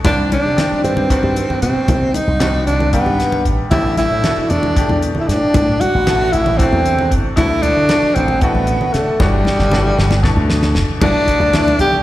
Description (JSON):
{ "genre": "electric jazz fusion", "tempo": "230 BPM (eighths)", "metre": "7/8", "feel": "straight", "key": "G major", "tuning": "A4 = 441 Hz", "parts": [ { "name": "bright grand piano", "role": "accompaniment", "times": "0.0-12.0 s", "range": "B2 to A4", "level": "-22 LUFS", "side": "left 2 dB", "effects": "slapback echo" }, { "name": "damped 70s drum kit", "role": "drums", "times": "0.0-11.9 s", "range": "crash cymbal, hi-hat, kick drum, snare drum", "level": "-20 LUFS", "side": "equal", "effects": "none" }, { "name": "congas", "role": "percussion", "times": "0.0-12.0 s", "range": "none", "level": "-22 LUFS", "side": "left 1 dB", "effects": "slapback echo" }, { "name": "breathy tenor saxophone", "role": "melody", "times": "0.1-12.0 s", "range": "G3 to G4", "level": "-16 LUFS", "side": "equal", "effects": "slapback echo" }, { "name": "slap bass with an envelope filter", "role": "bass", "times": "0.1-12.0 s", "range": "F#1 to D3", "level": "-18 LUFS", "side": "equal", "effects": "none" } ], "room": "light reverb", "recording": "live gig heard through the venue's PA, recital hall reverb", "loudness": "-13 LUFS", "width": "side -15 dB against mid", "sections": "0.0-11.0 A section; 11.0-12.0 B section", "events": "drum fill 9.2-11.0", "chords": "0.1 Cmadd9; 3.7 Am7; 7.4 D; 9.2 Gmaj9" }